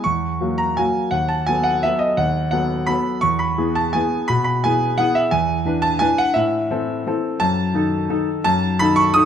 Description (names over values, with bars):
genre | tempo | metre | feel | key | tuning
classical, piano waltz | 172 BPM | 3/4 | uneven beats, rubato | E major | A4 = 439 Hz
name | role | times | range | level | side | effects
clear concert grand piano | solo | 0.0-9.3 s | D#2 to D#6 | -17 LUFS | equal | none
room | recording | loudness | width
wet recital hall reverb, RT60 1.7 s | none | -17 LUFS | side -8 dB against mid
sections
0.0-9.3 A section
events
none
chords
0.1 F#7/E; 1.1 B7/D#; 3.2 E; 5.3 E7; 6.4 Am; 7.4 D#dim/F#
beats
| 0.06 0.42 0.78 | 1.14 1.49 1.85 | 2.20 2.54 2.90 | 3.25 3.59 3.95 | 4.29 4.64 4.99 | 5.34 5.67 6.03 | 6.37 6.71 7.07 | 7.42 7.75 8.11 | 8.45 8.80 9.16